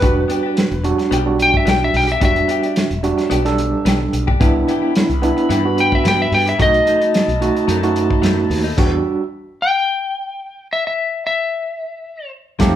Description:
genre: straight-eighth soul blues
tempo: 110 BPM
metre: 4/4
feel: swing 53% on 16ths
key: E minor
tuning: A4 = 441 Hz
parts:
  - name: electric slide guitar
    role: melody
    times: 0.0-12.3 s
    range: B4 to G5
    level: -17 LUFS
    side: left 2 dB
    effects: none
  - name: overdriven tine electric piano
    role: accompaniment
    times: 0.0-9.2, 12.6-12.8 s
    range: G3 to F5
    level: -18 LUFS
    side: right 4 dB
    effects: fast tremolo
  - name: direct-recorded clean electric guitar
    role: stabs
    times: 0.0-9.0, 12.6-12.7 s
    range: E3 to A4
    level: -27 LUFS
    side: left 6 dB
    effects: none
  - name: mellow fretless electric bass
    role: bass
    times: 0.0-9.0, 12.6-12.8 s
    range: E1 to G2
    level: -21 LUFS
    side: equal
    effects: none
  - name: warm soul drum kit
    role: drums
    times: 0.0-8.9, 12.6-12.7 s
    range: crash cymbal, hi-hat, kick drum, snare drum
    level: -19 LUFS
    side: equal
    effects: none
  - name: clear horn section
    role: sustained chords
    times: 4.4-9.2, 12.6-12.8 s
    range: E4 to B5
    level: -29 LUFS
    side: left 5 dB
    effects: none
room: moderate large studio reverb, RT60 0.9 s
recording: band playing live in one room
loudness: -14 LUFS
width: side -11 dB against mid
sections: 0.0-12.8 A section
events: stop 8.8-12.6; tine electric piano fill 12.3-12.8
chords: 0.0 Em7; 4.4 Cmaj7; 6.6 B7; 8.8 Em7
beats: | 0.03 0.57 1.12 1.67 | 2.22 2.76 3.31 3.86 | 4.41 4.95 5.50 6.05 | 6.59 7.14 7.69 8.23 | 8.78 9.32 9.87 10.42 | 10.96 11.51 12.05 12.60

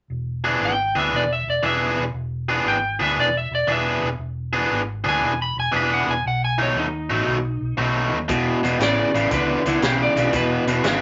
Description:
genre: electric blues shuffle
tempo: 117 BPM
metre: 4/4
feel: swing 68% on 8ths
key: E mixolydian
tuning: A4 = 440 Hz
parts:
  - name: vintage muted fingered electric bass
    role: bass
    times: 0.1-11.0 s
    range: E1 to D#2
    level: -30 LUFS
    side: equal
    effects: none
  - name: biting overdriven guitar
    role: riff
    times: 0.4-11.0 s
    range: E2 to G#4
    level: -23 LUFS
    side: equal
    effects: none
  - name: electric slide guitar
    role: melody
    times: 0.7-10.8 s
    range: D#4 to B5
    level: -26 LUFS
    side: equal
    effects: none
  - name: vintage drum kit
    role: drums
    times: 8.3-11.0 s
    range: hi-hat, kick drum, snare drum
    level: -30 LUFS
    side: equal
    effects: none
  - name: tonewheel organ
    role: accompaniment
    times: 10.2-11.0 s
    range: G#3 to B4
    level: -30 LUFS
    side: equal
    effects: slow rotary speaker, overdrive, chorus vibrato
room: moderate small room ambience, RT60 0.5 s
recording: nothing above 7.7 kHz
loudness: -21 LUFS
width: mono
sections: 0.1-8.3 A section; 8.3-11.0 B section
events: none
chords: 0.1 E7; 6.2 B7; 8.3 E9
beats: | 0.10 0.61 1.12 1.63 | 2.15 2.66 3.17 3.68 | 4.19 4.70 5.21 5.73 | 6.24 6.75 7.26 7.77 | 8.28 8.79 9.30 9.81 | 10.33 10.84

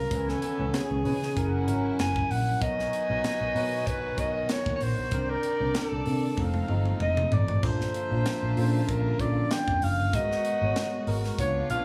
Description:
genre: polished 1980s jazz-funk pop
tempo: 96 BPM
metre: 4/4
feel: swing 54% on 16ths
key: unclear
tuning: A4 = 440 Hz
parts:
  - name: breathy alto saxophone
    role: melody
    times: 0.0-11.8 s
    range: G#4 to G#5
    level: -32 LUFS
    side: equal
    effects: none
  - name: tine electric piano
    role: accompaniment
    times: 0.0-11.8 s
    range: D#3 to A#5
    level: -34 LUFS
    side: equal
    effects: lush chorus
  - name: dark studio string section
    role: sustained chords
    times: 0.0-11.8 s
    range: B2 to D5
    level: -42 LUFS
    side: equal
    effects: none
  - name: vintage muted fingered electric bass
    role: bass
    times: 0.0-11.8 s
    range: F1 to C#3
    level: -32 LUFS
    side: equal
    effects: none
  - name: warm horn section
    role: second line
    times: 0.1-11.8 s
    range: A#3 to A5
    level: -42 LUFS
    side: equal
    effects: none
  - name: crisp fusion drum kit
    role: drums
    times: 0.1-11.8 s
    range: hi-hat, kick drum, snare drum, splash cymbal, toms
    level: -35 LUFS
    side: equal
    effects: none
room: small room ambience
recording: none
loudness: -27 LUFS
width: mono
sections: 0.0-11.8 A section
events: drum fill 6.4-7.6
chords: 0.1 C#m9; 1.4 F#7; 2.6 Bmaj7; 5.1 Cm9; 6.4 F7; 7.6 A#maj7; 10.1 G#m9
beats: | 0.11 0.74 1.36 1.99 | 2.62 3.24 3.87 4.50 | 5.12 5.75 6.38 7.00 | 7.63 8.26 8.88 9.51 | 10.13 10.76 11.38

